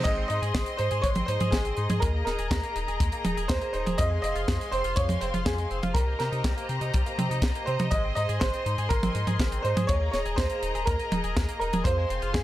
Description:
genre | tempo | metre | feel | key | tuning
italo disco | 122 BPM | 4/4 | straight | Ab major | A4 = 439 Hz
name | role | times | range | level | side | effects
clear grand piano | melody | 0.0-12.4 s | Ab4 to Eb5 | -31 LUFS | right 2 dB | analog delay
clear symphonic string section | sustained chords | 0.0-12.4 s | G4 to C6 | -33 LUFS | left 1 dB | none
round analog bass | bass | 0.0-12.4 s | Eb1 to C3 | -30 LUFS | equal | none
tight funk drum kit | drums | 0.0-12.4 s | crash cymbal, hi-hat, snare drum, toms | -31 LUFS | right 2 dB | small room ambience
direct-recorded clean electric guitar | arpeggios | 0.1-12.4 s | F3 to Ab4 | -39 LUFS | left 4 dB | analog chorus, analog delay
kick drum | drums | 0.1-12.4 s | none | -28 LUFS | equal | small room ambience
room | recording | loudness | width
studio reverb | dry, gritty hardware recording | -24 LUFS | side -14 dB against mid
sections
0.0-12.4 A section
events
none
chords
0.1 Ab; 2.0 Ebsus4; 4.0 Fm; 6.0 Cm7; 7.9 Ab; 9.9 Ebsus4; 11.9 Fm

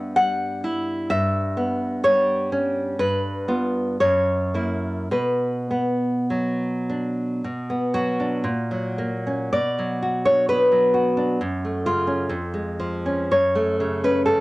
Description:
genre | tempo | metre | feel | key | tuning
romantic piece for solo classical guitar | 50-68 BPM | 2/4 | rubato | B minor | A4 = 440 Hz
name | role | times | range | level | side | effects
nylon-string guitar | solo | 0.0-14.4 s | E#2 to F#5 | -20 LUFS | equal | cassette tape
room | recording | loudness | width
moderate spring reverb, RT60 1.3 s, small room ambience | home recording on cassette | -20 LUFS | side -20 dB against mid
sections
0.0-7.4 A section; 7.4-14.4 B section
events
none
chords
0.0 Em/G; 1.1 C#m7b5/G; 3.0 G7; 4.0 F#7; 5.1 Bm; 8.4 F#/A#; 9.5 Bm; 11.4 F#m; 12.3 C#/E#; 13.3 F#m

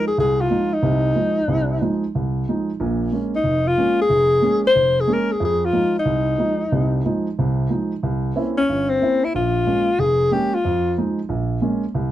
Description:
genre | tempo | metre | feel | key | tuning
jazz | 184 BPM | 4/4 | swing 62% on 8ths | F minor | A4 = 442 Hz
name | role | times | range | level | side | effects
warm alto saxophone | melody | 0.0-11.0 s | C4 to C5 | -18 LUFS | left 2 dB | none
warm grand piano | accompaniment | 0.0-12.1 s | F1 to E4 | -21 LUFS | right 2 dB | none
room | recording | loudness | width
moderate studio ambience, RT60 0.5 s | dark, warm production | -17 LUFS | side -13 dB against mid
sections
0.0-12.1 A section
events
none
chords
0.0 Fm7; 2.8 Bbm7; 5.4 Fm7; 8.0 C7b9; 9.3 Bbm7; 10.6 Fm7; 11.3 Bbm7

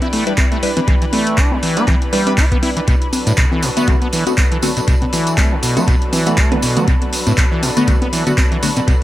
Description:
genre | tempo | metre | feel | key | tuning
acid house | 120 BPM | 4/4 | swing 56% on 16ths | B minor | A4 = 440 Hz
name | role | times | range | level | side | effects
lush unison pad | sustained chords | 0.0-9.0 s | E3 to B4 | -23 LUFS | equal | chorus, sidechain pumping
acid bass, saw | riff | 0.0-9.0 s | A2 to E4 | -19 LUFS | equal | overdrive, analog chorus, sidechain pumping, analog delay
booming analog drum machine | drums | 0.0-9.0 s | congas, handclaps, hi-hat | -20 LUFS | left 1 dB | analog delay
filtered dub chord stab | stabs | 0.3-8.7 s | D3 to B4 | -22 LUFS | equal | phaser, analog delay
electronic kick drum | drums | 0.4-9.0 s | none | -16 LUFS | equal | none
tambourine | percussion | 2.9-9.0 s | none | -27 LUFS | right 3 dB | analog delay
room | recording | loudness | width
light reverb, digital ambience | echo-heavy mix | -13 LUFS | side -14 dB against mid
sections
0.0-9.0 A section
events
none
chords
0.0 Em7; 2.9 Bm7

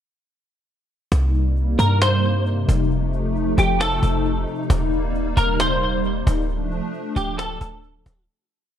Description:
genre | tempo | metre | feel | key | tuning
hip hop, atmospheric cloud-rap | 134 BPM | 4/4 | half-time | C dorian | A4 = 440 Hz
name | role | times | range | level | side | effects
hollow soft pad | sustained chords | 1.3-8.3 s | C3 to Eb4 | -24 LUFS | left 2 dB | ensemble chorus
warm 808-style bass | bass | 1.1-8.3 s | D1 to G2 | -21 LUFS | equal | none
cajon | drums | 1.1-8.2 s | none | -27 LUFS | equal | vintage 12-bit sampler grit
semi-hollow electric guitar | melody | 1.8-8.2 s | G4 to C5 | -23 LUFS | equal | ensemble chorus, ping-pong delay
room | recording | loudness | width
light reverb, digital ambience | bright 1980s-style digital production | -18 LUFS | side -10 dB against mid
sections
1.1-8.3 verse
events
fade-out 6.5-8.3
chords
1.1 Cm7; 2.9 F7; 4.7 Eb6; 6.5 Dm7

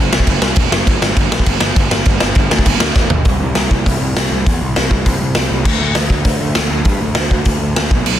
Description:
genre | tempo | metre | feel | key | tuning
punk rock | 200 BPM | 4/4 | straight | E minor | A4 = 440 Hz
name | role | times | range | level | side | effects
fuzz picked electric bass | bass | 0.0-8.2 s | E1 to G2 | -18 LUFS | equal | overdrive
raw garage drum kit | drums | 0.1-8.1 s | crash cymbal, hi-hat, kick drum, snare drum, toms | -13 LUFS | equal | soft clipping on snare
room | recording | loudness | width
little or no reverb | dense, heavily limited modern master | -12 LUFS | side -11 dB against mid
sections
0.0-3.3 A section; 3.3-8.2 B section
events
drum fill 3.0; half time 3.3-8.2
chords
none

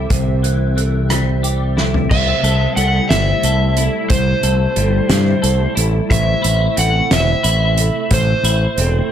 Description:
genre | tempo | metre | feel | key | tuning
post-rock | 60 BPM (dotted quarters) | 6/8 | straight | unclear | A4 = 440 Hz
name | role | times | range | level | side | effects
glassy FM pad | sustained chords | 0.0-9.1 s | C3 to G5 | -25 LUFS | left 1 dB | ensemble chorus, built-in reverb
semi-hollow electric guitar | arpeggios | 0.0-9.1 s | A2 to A4 | -24 LUFS | left 4 dB | ensemble chorus, slapback echo
vibraphone with medium hard mallets | arpeggios | 0.0-9.1 s | A4 to C5 | -25 LUFS | right 9 dB | slapback echo
growling fingered electric bass | bass | 0.0-9.0 s | E1 to G2 | -17 LUFS | equal | overdrive
loose indie drum kit | drums | 0.1-8.9 s | crash cymbal, hi-hat, kick drum, rim click, snare drum, toms | -19 LUFS | equal | none
overdriven slide guitar | melody | 2.1-9.1 s | C5 to F#5 | -19 LUFS | equal | slapback echo
room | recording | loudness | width
little or no reverb | none | -13 LUFS | side -9 dB against mid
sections
0.0-2.1 A section; 2.1-9.1 B section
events
drum fill 1.8-2.1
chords
0.0 C; 2.1 C6; 6.1 Am

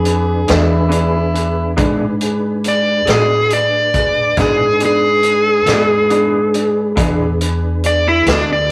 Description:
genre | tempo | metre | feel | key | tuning
slow blues | 46 BPM (dotted quarters) | 12/8 | straight | unclear | A4 = 444 Hz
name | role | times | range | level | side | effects
overdriven harmonica | second line | 0.0-1.8 s | E4 to G#4 | -23 LUFS | equal | none
warm upright piano | accompaniment | 0.0-8.7 s | D4 to D5 | -29 LUFS | equal | none
mellow tonewheel organ | sustained chords | 0.0-8.7 s | D4 to B4 | -28 LUFS | equal | chorus vibrato, slow rotary speaker
upright bass | bass | 0.0-8.7 s | D2 to A2 | -21 LUFS | equal | none
vintage drum kit | drums | 0.1-8.5 s | hi-hat, kick drum, snare drum | -22 LUFS | equal | none
electric guitar through a small old amp | accompaniment | 0.5-8.5 s | E3 to G#4 | -24 LUFS | equal | tremolo
dark smooth lead guitar | melody | 2.7-8.7 s | D4 to D5 | -16 LUFS | equal | overdrive
room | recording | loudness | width
light reverb | rough rehearsal-room recording | -15 LUFS | mono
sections
0.0-8.7 A section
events
none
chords
0.0 E7

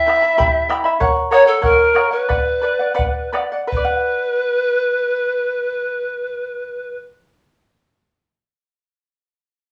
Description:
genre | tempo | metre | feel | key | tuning
andean folk, Andean ensemble | 78-97 BPM | 2/4 | straight | B minor | A4 = 440 Hz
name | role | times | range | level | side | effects
breathy bright pan flute | melody | 0.0-7.0 s | A4 to E5 | -19 LUFS | equal | none
charango | accompaniment | 0.0-7.3 s | E4 to B5 | -22 LUFS | equal | none
bombo | percussion | 0.1-4.1 s | none | -25 LUFS | equal | none
room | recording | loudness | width
wet studio ambience, RT60 0.5 s | band playing live in one room, small room ambience | -17 LUFS | mono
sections
0.0-3.7 A section; 3.7-6.8 B section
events
slowing down 1.0-3.7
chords
0.0 Em; 1.0 F#; 2.3 Bm

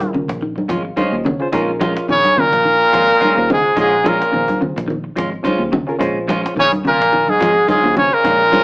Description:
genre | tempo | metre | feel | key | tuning
afrobeat | 107 BPM | 4/4 | swing 55% on 16ths | Bb minor | A4 = 439 Hz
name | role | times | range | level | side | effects
warm trumpet | melody | 0.0-8.6 s | Ab4 to Db5 | -13 LUFS | equal | none
clear tenor saxophone | second line | 0.0-8.6 s | Ab3 to Db4 | -24 LUFS | equal | none
muted trombone section | second line | 0.0-8.6 s | Ab2 to Db3 | -22 LUFS | equal | none
reed electric piano | accompaniment | 0.0-8.6 s | Db4 to F5 | -22 LUFS | equal | none
clean electric guitar | arpeggios | 0.0-8.6 s | Db3 to F3 | -24 LUFS | left 1 dB | none
semi-hollow electric guitar | stabs | 0.0-8.6 s | Ab3 to F4 | -23 LUFS | right 1 dB | none
cajon | drums | 0.0-8.6 s | none | -29 LUFS | equal | none
congas | percussion | 0.0-8.6 s | none | -23 LUFS | equal | none
fingered electric bass | bass | 0.1-8.6 s | Ab1 to Eb2 | -27 LUFS | equal | none
room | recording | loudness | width
moderate small room reverb, RT60 0.6 s | band playing live in one room, AM radio sound | -13 LUFS | side -26 dB against mid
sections
0.0-8.6 A section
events
reed electric piano fill 0.4-1.5; drum fill 8.2-8.6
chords
0.0 Bbm7

